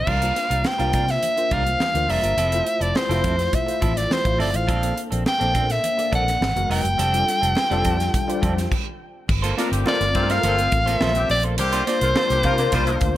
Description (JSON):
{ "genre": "polished 1980s jazz-funk pop", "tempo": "104 BPM", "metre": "4/4", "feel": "straight", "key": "unclear", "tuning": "A4 = 440 Hz", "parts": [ { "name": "bright soprano saxophone", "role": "melody", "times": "0.0-13.2 s", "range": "C5 to G5", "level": "-22 LUFS", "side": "equal", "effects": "none" }, { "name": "tine electric piano", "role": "accompaniment", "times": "0.0-13.2 s", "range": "G3 to D5", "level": "-28 LUFS", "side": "left 3 dB", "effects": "overdrive, fast stereo tremolo, ensemble chorus" }, { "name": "vintage muted fingered electric bass", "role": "bass", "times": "0.0-13.2 s", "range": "F1 to C3", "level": "-24 LUFS", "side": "equal", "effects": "none" }, { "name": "semi-hollow electric guitar", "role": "riff", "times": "0.1-13.1 s", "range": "F3 to D5", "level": "-30 LUFS", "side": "right 4 dB", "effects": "analog chorus" }, { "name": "crisp fusion drum kit", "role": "drums", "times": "0.1-13.2 s", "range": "crash cymbal, hi-hat, kick drum, snare drum", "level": "-26 LUFS", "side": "equal", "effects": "none" }, { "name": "congas", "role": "percussion", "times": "0.1-12.9 s", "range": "none", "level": "-35 LUFS", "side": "right 2 dB", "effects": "none" }, { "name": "warm horn section", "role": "second line", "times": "9.6-13.0 s", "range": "D3 to C5", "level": "-28 LUFS", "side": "left 1 dB", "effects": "none" } ], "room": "light reverb, small room ambience", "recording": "none", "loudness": "-18 LUFS", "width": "side -14 dB against mid", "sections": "0.1-9.3 A section; 9.3-13.2 B section", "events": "stop 8.7-9.3", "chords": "0.1 C9sus4; 2.4 Fmaj7; 4.7 Bbmaj9; 6.4 Abm9; 7.0 F69; 9.3 Gm11; 11.6 C9sus4" }